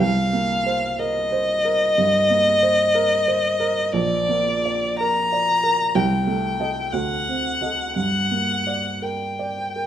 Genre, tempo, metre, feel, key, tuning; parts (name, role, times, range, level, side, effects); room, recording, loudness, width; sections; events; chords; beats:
classical, romantic duo for violin and grand piano; 53-64 BPM; 4/4; rubato; A4 = 440 Hz
rich violin; melody; 0.0-9.9 s; D5 to Bb5; -20 LUFS; left 2 dB
warm baby grand piano; accompaniment; 0.0-9.9 s; Bb1 to Eb5; -24 LUFS; right 4 dB
moderate recital hall reverb, RT60 1.6 s; close, detailed microphones; -18 LUFS; side -10 dB against mid
0.0-9.9 A section
0.0 Cm7; 3.9 Bb; 5.9 Am7b5/C; 6.9 D7b9; 8.0 Gm
0.99 1.97 2.94 | 3.92 4.99 5.95 6.93 | 7.96 9.03